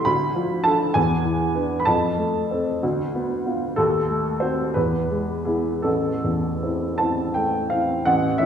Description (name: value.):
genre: classical, romantic character piece for solo piano.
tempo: 51-70 BPM (dotted quarters).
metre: 6/8.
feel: rubato.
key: A minor.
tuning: A4 = 439 Hz.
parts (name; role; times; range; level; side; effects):
warm upright piano; solo; 0.0-8.5 s; A1 to B5; -20 LUFS; equal; none.
room: wet recital hall reverb, RT60 1.4 s.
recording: heard from further back in the room.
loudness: -20 LUFS.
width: side -8 dB against mid.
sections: 0.0-8.1 A section.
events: none.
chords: 0.1 Dm; 1.0 E7; 1.9 F; 2.8 Bdim/D; 3.8 D#dim7; 4.8 E; 5.9 Am.